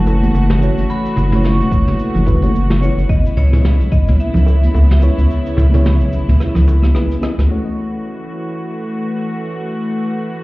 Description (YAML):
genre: sunset chillout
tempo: 109 BPM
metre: 4/4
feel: swing 58% on 16ths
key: F# minor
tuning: A4 = 440 Hz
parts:
  - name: vibraphone with hard mallets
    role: melody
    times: 0.0-6.9 s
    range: C#5 to C#6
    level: -28 LUFS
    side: right 1 dB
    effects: digital delay
  - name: mellow FM electric piano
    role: accompaniment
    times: 0.0-10.4 s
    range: A3 to D#5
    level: -23 LUFS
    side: equal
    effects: chorus, auto-pan, low-pass filter, digital delay
  - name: warm studio string section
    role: sustained chords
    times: 0.0-10.4 s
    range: C#3 to F#4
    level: -23 LUFS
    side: left 1 dB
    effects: low-pass filter
  - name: round analog bass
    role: bass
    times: 0.0-7.5 s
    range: E1 to C#2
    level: -12 LUFS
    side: equal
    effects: none
  - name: jazz brush drum kit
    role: drums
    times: 0.1-7.5 s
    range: cabasa, hi-hat, rim click, snare drum, toms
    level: -24 LUFS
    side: equal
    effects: none
  - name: bongos and congas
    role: percussion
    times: 0.1-6.9 s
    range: none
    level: -22 LUFS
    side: equal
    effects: none
  - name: electronic kick drum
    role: drums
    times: 1.7-4.0 s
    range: none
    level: -15 LUFS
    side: equal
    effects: overdrive
room: studio ambience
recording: heard muffled through a wall, club reverb, EQ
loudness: -12 LUFS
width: side -20 dB against mid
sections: 0.0-7.5 A section; 7.5-10.4 B section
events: kick drops out 5.3-7.5; drum fill 6.4-7.5; filter sweep on FM electric piano 7.5-10.4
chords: 0.0 F#m7; 3.1 C#m7; 7.5 F#m7